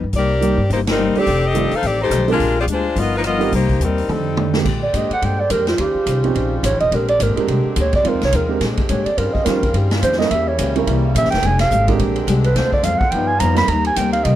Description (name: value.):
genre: jazz, big band swing.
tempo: 212 BPM.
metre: 4/4.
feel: swing 59% on 8ths.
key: Bb mixolydian.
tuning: A4 = 438 Hz.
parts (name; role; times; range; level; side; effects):
fingerpicked steel-string acoustic guitar; accompaniment; 0.0-14.4 s; F2 to C5; -25 LUFS; left 5 dB; none.
upright bass; bass; 0.0-14.4 s; Eb1 to Bb2; -20 LUFS; equal; none.
swinging big-band drum kit; drums; 0.1-14.3 s; crash cymbal, hi-hat, kick drum, ride cymbal, rim click, snare drum, toms; -24 LUFS; right 1 dB; none.
bright saxophone section; melody; 0.2-4.6 s; F3 to F5; -18 LUFS; left 3 dB; none.
warm upright piano; accompaniment; 0.4-13.7 s; D3 to C5; -22 LUFS; right 9 dB; none.
warm saxophone section; sustained chords; 4.6-14.4 s; C#3 to C5; -27 LUFS; left 2 dB; none.
dark clarinet; melody; 4.8-14.4 s; F4 to B5; -18 LUFS; right 3 dB; slapback echo.
room: light reverb.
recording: none.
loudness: -15 LUFS.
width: side -12 dB against mid.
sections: 0.0-4.7 A section; 4.7-14.4 B section.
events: band accent 0.8; drum fill 4.1-4.7; clarinet solo 4.7-14.4.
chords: 0.1 Cm7; 1.3 F13; 2.4 Bb13; 3.0 G7alt; 3.5 Cm7; 4.1 F13; 4.7 Bb13; 5.8 Eb13; 6.9 Bb13; 8.1 Fm7; 8.6 Bb13; 9.2 Eb13; 10.3 Edim7; 11.4 Bb13; 12.6 Dm7b5; 13.1 G7alt; 13.7 Cm7.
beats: | 0.14 0.42 0.70 0.98 | 1.26 1.55 1.83 2.11 | 2.40 2.68 2.96 3.24 | 3.53 3.81 4.09 4.38 | 4.66 4.94 5.22 5.51 | 5.79 6.07 6.36 6.64 | 6.92 7.20 7.49 7.77 | 8.05 8.33 8.62 8.90 | 9.18 9.46 9.74 10.03 | 10.31 10.59 10.87 11.15 | 11.43 11.71 11.99 12.28 | 12.56 12.84 13.12 13.40 | 13.68 13.96 14.25.